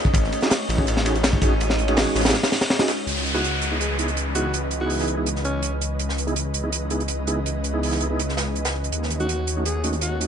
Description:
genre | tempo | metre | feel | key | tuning
drum and bass, jungle | 164 BPM | 4/4 | straight | C# minor | A4 = 440 Hz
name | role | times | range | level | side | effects
growling alto saxophone | melody | 0.0-0.1, 3.3-5.7, 9.2-10.2 s | C#4 to G#4 | -31 LUFS | equal | dub echo
ethereal airy pad | sustained chords | 0.0-10.3 s | E3 to D#5 | -29 LUFS | left 1 dB | ensemble chorus, built-in reverb
drifting glass-harmonics texture | texture | 0.0-3.1 s | D#5 | -34 LUFS | right 2 dB | chorus, built-in reverb
detuned saw bass | bass | 0.1-10.3 s | G#1 to D#2 | -26 LUFS | equal | none
crunchy breakbeat drum kit | drums | 0.1-3.0 s | hi-hat, kick drum, ride cymbal, snare drum | -22 LUFS | equal | none
open jazz drum kit | drums | 0.1-10.3 s | hi-hat, snare drum | -28 LUFS | right 4 dB | high-pass filter on hats, high-pass filter on snare, high-pass filter on room
mellow tonewheel organ | stabs | 0.4-10.3 s | A3 to G#4 | -28 LUFS | right 2 dB | chorus vibrato, fast rotary speaker, dub echo
downlifter | sound effects | 3.1-6.0 s | none | -29 LUFS | equal | none
room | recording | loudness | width
light reverb, studio reverb | nothing above 10.9 kHz | -20 LUFS | side -8 dB against mid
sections
0.0-3.1 A section; 3.1-10.3 B section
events
drop 0.0-3.1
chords
0.1 G#7sus4; 3.1 C#m7; 8.9 D#m7b5

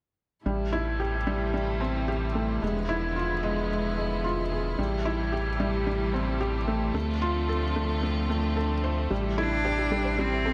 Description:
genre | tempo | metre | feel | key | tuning
piano and strings electronica | 111 BPM | 4/4 | straight | A minor | A4 = 440 Hz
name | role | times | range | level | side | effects
rich string quartet | sustained chords | 0.5-10.5 s | C3 to F4 | -36 LUFS | equal | none
felt-muted upright piano | riff | 0.5-10.5 s | G3 to C5 | -31 LUFS | equal | digital delay
round analog bass | bass | 0.5-10.5 s | E1 to D2 | -33 LUFS | equal | none
soft round pluck | arpeggios | 9.1-10.5 s | G4 to C5 | -39 LUFS | equal | chorus, digital delay
rich cello | melody | 9.4-10.5 s | C4 to D4 | -30 LUFS | equal | none
room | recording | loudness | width
moderate lush hall reverb, RT60 2.0 s, studio ambience | none | -28 LUFS | mono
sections
0.5-10.5 A section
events
none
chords
0.5 Am7; 2.6 E7b9; 4.8 Am7; 6.9 Dm7; 9.1 Am7

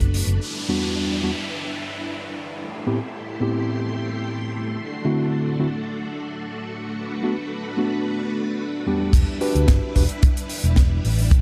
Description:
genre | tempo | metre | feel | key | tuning
nu-disco, nu disco | 110 BPM | 4/4 | straight | E minor | A4 = 440 Hz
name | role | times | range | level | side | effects
mellow reed electric piano | accompaniment | 0.0-10.0 s | E2 to B4 | -26 LUFS | equal | sidechain pumping, slapback echo
string machine, full ensemble | sustained chords | 0.0-11.4 s | G3 to C6 | -33 LUFS | equal | ensemble chorus, vintage 12-bit sampler grit, sidechain pumping
hollow-body short-scale picked electric bass | bass | 0.0-0.4, 9.1-11.4 s | E1 to D2 | -22 LUFS | equal | tube saturation
kick drum | drums | 0.0-0.1, 9.1-11.4 s | none | -19 LUFS | equal | none
tight funk drum kit | drums | 0.0-0.4, 9.1-11.4 s | crash cymbal, hi-hat, snare drum | -32 LUFS | equal | low-pass filter on hats, low-pass filter on cymbals, low-pass filter on snare, low-pass filter on room
downlifter | sound effects | 0.4-4.8 s | none | -34 LUFS | equal | none
room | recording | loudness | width
light reverb, small room ambience | lossy compression artefacts | -23 LUFS | mono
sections
0.4-9.1 A section; 9.1-11.4 B section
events
filter sweep on string machine 0.4-9.1; drop 9.1-11.4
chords
0.4 Em7; 2.6 Am7; 4.8 D7; 7.0 Em7

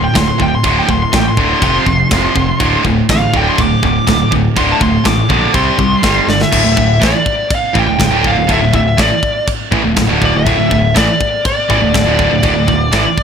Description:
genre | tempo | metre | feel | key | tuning
heavy metal | 122 BPM | 4/4 | straight | D minor | A4 = 442 Hz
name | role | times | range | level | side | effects
high-gain lead guitar | melody | 0.0-13.2 s | D5 to D6 | -16 LUFS | left 1 dB | distortion, digital delay
heavy high-gain guitar | riff | 0.0-13.0 s | D2 to C4 | -16 LUFS | right 12 dB | distortion
scooped high-gain guitar | riff | 0.0-13.0 s | D2 to C4 | -17 LUFS | left 10 dB | distortion
growling picked electric bass | bass | 0.0-13.0 s | D1 to C2 | -18 LUFS | equal | overdrive
tight metal drum kit | drums | 0.2-13.2 s | crash cymbal, kick drum, snare drum | -16 LUFS | left 1 dB | none
room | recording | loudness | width
light reverb | none | -10 LUFS | side -7 dB against mid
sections
0.0-6.5 A section; 6.5-13.2 B section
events
lead electric guitar solo 0.0-6.5; drum fill 6.3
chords
0.0 D5; 1.6 F5; 2.6 D5; 5.5 C5; 6.0 G5; 6.5 D5

